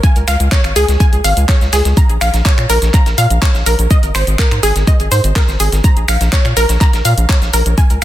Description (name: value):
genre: progressive house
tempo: 124 BPM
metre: 4/4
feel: straight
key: unclear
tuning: A4 = 440 Hz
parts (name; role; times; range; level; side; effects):
- wide unison pluck; arpeggios; 0.0-8.0 s; Ab4 to Bb5; -17 LUFS; equal; sidechain pumping, dub echo
- dusty soul sampler-style drum kit; drums; 0.0-8.0 s; hi-hat, snare drum; -28 LUFS; right 1 dB; none
- electronic kick drum; drums; 0.0-7.9 s; none; -11 LUFS; equal; none
- pop drum kit; drums; 0.0-8.0 s; finger snaps, handclaps, hi-hat, shaker; -20 LUFS; equal; soft clipping on snare
- round analog bass; bass; 0.2-8.0 s; Ab1 to Bb2; -14 LUFS; equal; sidechain pumping
room: little or no reverb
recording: dense, heavily limited modern master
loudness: -10 LUFS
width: side -14 dB against mid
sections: 0.0-8.0 A section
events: none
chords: 0.0 Db5; 2.0 N.C.